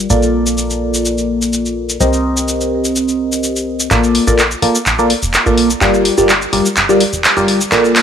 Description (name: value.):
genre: piano house.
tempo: 126 BPM.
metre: 4/4.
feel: straight.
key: Bb major.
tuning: A4 = 440 Hz.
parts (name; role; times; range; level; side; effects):
barking FM electric piano; riff; 0.0-8.0 s; G3 to Eb5; -14 LUFS; equal; phaser, cassette tape, low-pass filter, analog delay.
plucky analog bass; bass; 0.0-8.0 s; F1 to C2; -21 LUFS; equal; tube saturation.
punchy analog drum machine; drums; 0.1-8.0 s; handclaps, hi-hat, shaker; -15 LUFS; equal; none.
room: light reverb.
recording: dry, gritty hardware recording, transformer saturation, high-pass filter.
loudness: -11 LUFS.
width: side -8 dB against mid.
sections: 0.0-3.9 A section; 3.9-8.0 B section.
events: build-up 3.9-8.0; drum fill 3.9-8.0.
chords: 0.1 Bbmaj7; 2.0 Cm7; 3.9 Bbmaj7; 5.8 Gm7.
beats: | 0.10 0.58 1.05 1.53 | 2.01 2.48 2.96 3.43 | 3.91 4.39 4.86 5.34 | 5.82 6.29 6.77 7.24 | 7.72.